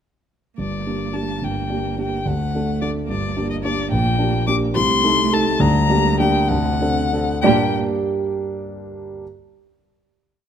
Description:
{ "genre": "quick classical-period movement for piano trio", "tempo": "63-74 BPM (dotted quarters)", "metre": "6/8", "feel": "straight", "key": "G minor", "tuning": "A4 = 438 Hz", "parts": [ { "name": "rich violin", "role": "melody", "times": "0.6-7.8 s", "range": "D5 to D6", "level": "-22 LUFS", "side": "left 5 dB", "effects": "none" }, { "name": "rich cello", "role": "second line", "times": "0.6-7.8 s", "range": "Bb2 to Bb3", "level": "-26 LUFS", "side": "right 12 dB", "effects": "none" }, { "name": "dark concert grand piano", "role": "accompaniment", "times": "0.6-9.2 s", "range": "G1 to D5", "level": "-20 LUFS", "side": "equal", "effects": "none" } ], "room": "light reverb", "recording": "close, detailed microphones", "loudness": "-17 LUFS", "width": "side -8 dB against mid", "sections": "0.6-7.4 A section; 7.4-9.2 final chord", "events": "slowing down 3.1-7.4", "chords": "0.6 Gm; 2.3 D; 3.1 Gm; 3.9 Gm/Bb; 4.8 Adim/C; 5.6 Gm/D; 6.5 D7; 7.4 Gm", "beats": "| 0.59 1.44 | 2.27 3.09 | 3.92 4.76 | 5.61 6.50 | 7.42 8.32" }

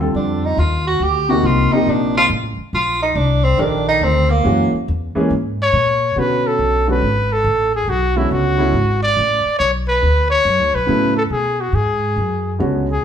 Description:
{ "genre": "modal jazz", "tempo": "140 BPM", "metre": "4/4", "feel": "swing 66% on 8ths", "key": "B dorian from 6.2 s", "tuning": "A4 = 440 Hz", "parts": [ { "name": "warm concert grand piano", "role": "accompaniment", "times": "0.0-12.9 s", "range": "C3 to Bb4", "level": "-19 LUFS", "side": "equal", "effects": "none" }, { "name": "upright bass", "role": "bass", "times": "0.0-13.0 s", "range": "G#1 to B2", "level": "-20 LUFS", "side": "equal", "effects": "none" }, { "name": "warm tenor saxophone", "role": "second line", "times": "0.2-4.7 s", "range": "Bb3 to G4", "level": "-17 LUFS", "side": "right 2 dB", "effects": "none" }, { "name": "breathy trumpet", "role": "melody", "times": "5.6-13.0 s", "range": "E4 to D5", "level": "-16 LUFS", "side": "equal", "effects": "none" } ], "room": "moderate large studio reverb, RT60 1.0 s", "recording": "band playing live in one room", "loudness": "-14 LUFS", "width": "side -8 dB against mid", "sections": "0.0-6.2 A section; 6.2-13.0 B section", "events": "tenor saxophone solo 0.0-6.2", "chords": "0.0 Bb; 4.4 F#7; 6.2 Bm69", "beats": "0.16 0.59 | 1.02 1.45 1.87 2.30 | 2.73 3.16 3.59 4.02 | 4.44 4.87 5.30 5.73 | 6.16 6.59 7.02 7.45 | 7.88 8.30 8.73 9.16 | 9.59 10.02 10.45 10.88 | 11.31 11.74 12.17 12.60 | 13.03" }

